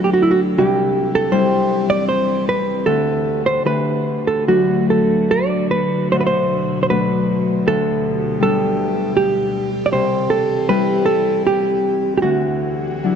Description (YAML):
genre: celtic folk, Celtic slow air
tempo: 70-82 BPM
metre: 3/4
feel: rubato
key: unclear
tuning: A4 = 441 Hz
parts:
  - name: hollow-body jazz guitar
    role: melody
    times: 0.0-13.2 s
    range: E4 to D5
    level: -18 LUFS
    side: right 3 dB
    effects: none
  - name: Celtic harp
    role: accompaniment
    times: 0.0-13.2 s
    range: C2 to E4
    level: -20 LUFS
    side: left 5 dB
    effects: none
  - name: evolving wavetable pad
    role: sustained chords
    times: 0.0-13.2 s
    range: B2 to A4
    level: -24 LUFS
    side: right 1 dB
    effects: phaser, built-in reverb
room: moderate cathedral reverb, RT60 6.4 s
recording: dark, warm production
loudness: -15 LUFS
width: side -7 dB against mid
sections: 0.0-13.2 A section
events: none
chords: 0.0 D; 0.6 C; 2.9 Dsus4; 3.7 D; 7.7 G/D; 9.9 C; 12.2 Dadd9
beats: | 0.58 1.32 2.09 | 2.88 3.66 4.48 | 5.31 6.12 6.91 | 7.68 8.44 9.19 | 9.94 10.70 11.46 | 12.24 13.04